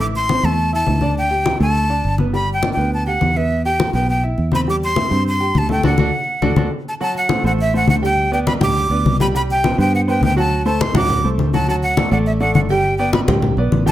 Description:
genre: latin, salsa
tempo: 205 BPM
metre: 4/4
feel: straight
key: unclear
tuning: A4 = 435 Hz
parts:
  - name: breathy bright jazz flute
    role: melody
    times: 0.0-13.9 s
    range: E5 to D6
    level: -20 LUFS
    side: equal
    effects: slapback echo
  - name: clear grand piano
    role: accompaniment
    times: 0.0-13.9 s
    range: E3 to G5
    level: -22 LUFS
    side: equal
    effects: none
  - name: fingered electric bass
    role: bass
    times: 0.0-13.9 s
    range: G1 to G2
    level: -19 LUFS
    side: right 1 dB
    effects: none
  - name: congas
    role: percussion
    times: 0.0-13.9 s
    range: none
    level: -21 LUFS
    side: left 3 dB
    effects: none
room: light reverb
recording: close, detailed microphones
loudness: -15 LUFS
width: side -13 dB against mid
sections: 0.0-7.0 A section; 7.0-13.9 B section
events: band accent 5.8-7.0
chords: 0.0 Am; 1.2 Dsus4; 1.7 D5; 2.3 G; 3.5 Em; 4.7 C/E; 5.8 D; 7.0 D7; 8.2 G/D; 9.3 C5; 10.5 D7; 11.7 D; 12.8 G

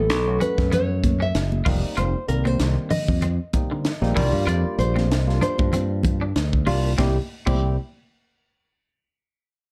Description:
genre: electric jazz fusion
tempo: 96 BPM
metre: 4/4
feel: swing 55% on 16ths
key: unclear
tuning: A4 = 438 Hz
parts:
  - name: nylon-string guitar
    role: melody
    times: 0.0-6.3 s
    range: A4 to E5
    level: -29 LUFS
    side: equal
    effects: slapback echo
  - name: barky tine electric piano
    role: accompaniment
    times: 0.0-7.8 s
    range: Eb3 to G4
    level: -30 LUFS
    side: equal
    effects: overdrive, phaser
  - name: semi-hollow electric guitar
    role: stabs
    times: 0.0-7.7 s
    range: D3 to F4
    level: -33 LUFS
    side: equal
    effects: ensemble chorus
  - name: modern bright fingered electric bass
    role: bass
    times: 0.0-7.8 s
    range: F1 to G2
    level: -25 LUFS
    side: equal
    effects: none
  - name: crisp fusion drum kit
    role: drums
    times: 0.1-7.6 s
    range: crash cymbal, hi-hat, kick drum, snare drum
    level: -28 LUFS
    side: equal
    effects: none
  - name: congas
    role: percussion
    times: 0.4-7.8 s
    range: none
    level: -31 LUFS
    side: equal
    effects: none
room: light reverb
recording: dark, warm production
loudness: -22 LUFS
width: mono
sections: 0.0-7.0 A section; 7.0-9.5 B section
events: none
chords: 0.0 B9sus4; 1.7 F9sus4; 4.2 C9sus4; 7.0 C

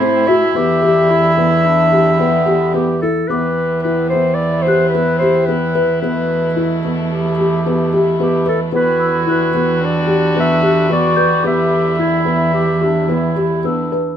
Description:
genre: contemporary instrumental, chamber music in an uneven meter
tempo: 110 BPM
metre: 5/4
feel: straight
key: E minor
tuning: A4 = 440 Hz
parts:
  - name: warm clarinet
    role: melody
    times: 0.0-13.6 s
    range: G4 to E5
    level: -17 LUFS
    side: left 1 dB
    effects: none
  - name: dark clarinet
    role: second line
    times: 0.0-3.0, 8.7-14.2 s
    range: B3 to G4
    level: -20 LUFS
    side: right 1 dB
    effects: none
  - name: muted French horn section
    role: sustained chords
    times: 0.0-14.2 s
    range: B2 to F#4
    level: -23 LUFS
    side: left 2 dB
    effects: none
  - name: felt-muted upright piano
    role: arpeggios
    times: 0.0-14.2 s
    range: B3 to B4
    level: -18 LUFS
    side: left 3 dB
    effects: none
  - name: dark cello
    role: bass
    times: 0.0-14.2 s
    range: E2 to A2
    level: -20 LUFS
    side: right 4 dB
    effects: none
  - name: large celesta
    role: texture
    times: 3.3-14.2 s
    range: D6 to G6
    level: -26 LUFS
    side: left 1 dB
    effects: none
room: light reverb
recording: minimal, uncompressed stereo recording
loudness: -12 LUFS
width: side -9 dB against mid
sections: 0.0-3.3 A section; 3.3-14.2 B section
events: none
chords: 0.0 Am; 0.6 Em7; 3.3 Cmaj7/E; 6.0 G69/E; 8.7 Em9; 11.4 Em7

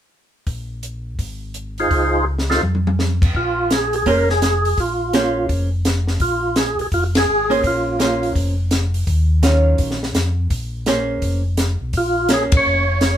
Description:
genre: soul jazz organ trio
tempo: 168 BPM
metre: 4/4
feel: swing 64% on 8ths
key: Bb minor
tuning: A4 = 440 Hz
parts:
  - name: mellow tonewheel organ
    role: bass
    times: 0.5-13.2 s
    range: F1 to F2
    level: -21 LUFS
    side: equal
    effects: chorus vibrato, slow rotary speaker
  - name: compact cocktail drum kit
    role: drums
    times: 0.5-13.1 s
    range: crash cymbal, hi-hat, kick drum, ride cymbal, snare drum, toms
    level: -20 LUFS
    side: equal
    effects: none
  - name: percussive tonewheel organ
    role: melody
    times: 1.8-8.3, 12.0-13.2 s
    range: Eb4 to Db5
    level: -19 LUFS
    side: right 1 dB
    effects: slow rotary speaker, overdrive, chorus vibrato
  - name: archtop guitar, miked and amplified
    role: accompaniment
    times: 4.1-12.8 s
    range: Eb3 to C5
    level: -20 LUFS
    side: right 2 dB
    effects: none
room: moderate studio reverb, RT60 0.6 s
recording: band playing live in one room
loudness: -16 LUFS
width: side -10 dB against mid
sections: 0.5-3.3 A section; 3.3-13.2 B section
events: drum fill 2.3-3.0; band accent 7.1, 12.5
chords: 0.5 N.C.; 1.2 Ab; 1.9 Dbmaj7; 2.6 N.C.; 3.3 Bbm9; 9.1 Ebm9; 10.5 Bbm9

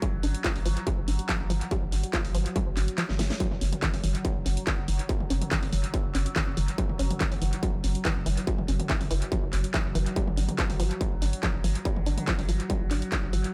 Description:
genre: driving peak-time techno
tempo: 142 BPM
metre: 4/4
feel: straight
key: unclear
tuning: A4 = 444 Hz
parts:
  - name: tight sequenced synth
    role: riff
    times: 0.0-13.4 s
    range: E3 to D4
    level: -36 LUFS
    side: equal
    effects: chorus, tube saturation, cassette tape, sidechain pumping, tape echo
  - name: overtone-sweeping drone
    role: drone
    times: 0.0-13.5 s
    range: F#3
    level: -41 LUFS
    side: equal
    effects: chorus, built-in reverb, sidechain pumping
  - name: electronic kick drum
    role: drums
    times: 0.0-13.2 s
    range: none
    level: -32 LUFS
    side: equal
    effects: distortion
  - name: techno drum kit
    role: drums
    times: 0.0-13.5 s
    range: handclaps, hi-hat, snare drum, toms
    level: -36 LUFS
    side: equal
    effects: tape echo
  - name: saturated sub bass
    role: bass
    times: 0.1-13.4 s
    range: F#1 to G1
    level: -32 LUFS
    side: equal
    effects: overdrive, sidechain pumping, low-pass filter
room: light reverb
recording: echo-heavy mix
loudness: -28 LUFS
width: mono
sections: 0.0-13.5 A section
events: kick drops out 3.0-3.4; drum fill 3.1-3.4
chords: 0.0 G5; 3.4 F#5; 10.2 G5

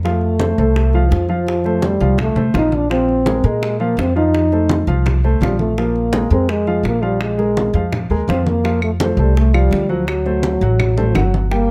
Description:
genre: Afro-Cuban jazz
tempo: 167 BPM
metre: 4/4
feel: straight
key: F mixolydian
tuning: A4 = 440 Hz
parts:
  - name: warm baby grand piano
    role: accompaniment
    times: 0.0-11.7 s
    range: F3 to G5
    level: -24 LUFS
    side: equal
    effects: none
  - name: upright bass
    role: bass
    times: 0.0-11.7 s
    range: G1 to Bb2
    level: -20 LUFS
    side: equal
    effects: none
  - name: congas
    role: percussion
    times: 0.0-11.7 s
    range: none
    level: -27 LUFS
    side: equal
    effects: none
  - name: trombone with bucket mute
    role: melody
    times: 0.1-11.7 s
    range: Eb3 to Eb4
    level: -21 LUFS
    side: equal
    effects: none
  - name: bongos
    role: percussion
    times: 0.1-11.7 s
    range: none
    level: -31 LUFS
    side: equal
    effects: none
  - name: claves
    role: percussion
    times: 8.8-11.3 s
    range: none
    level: -31 LUFS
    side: equal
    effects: none
room: little or no reverb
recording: close, detailed microphones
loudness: -16 LUFS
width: mono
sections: 0.0-11.7 A section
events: none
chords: 0.0 F; 2.9 Bbsus2; 4.3 F7; 5.8 Bb5; 8.6 Fadd9; 10.1 D7

